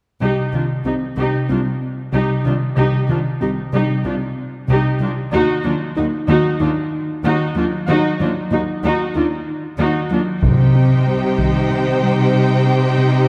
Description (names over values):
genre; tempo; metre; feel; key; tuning
cinematic, hybrid orchestral and electronic film score; 94 BPM; 4/4; straight; unclear; A4 = 436 Hz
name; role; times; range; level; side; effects
rich symphonic viola section; accompaniment; 0.2-13.3 s; D4 to G4; -23 LUFS; equal; none
harp-like synth pluck; arpeggios; 0.2-13.2 s; C3 to Eb4; -22 LUFS; equal; chorus, delay
rich symphonic cello section; bass; 0.2-13.3 s; C2 to C3; -23 LUFS; equal; none
warm symphonic violin section; second line; 10.4-13.3 s; C5 to G5; -25 LUFS; equal; none
taiko ensemble; drums; 10.4-11.7 s; none; -24 LUFS; equal; none
room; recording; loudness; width
wet concert hall reverb, RT60 2.6 s; none; -18 LUFS; mono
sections
0.2-10.4 A section; 10.4-13.3 B section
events
build-up 10.4-13.3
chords
0.2 Cm; 5.3 Ebm; 10.4 Cm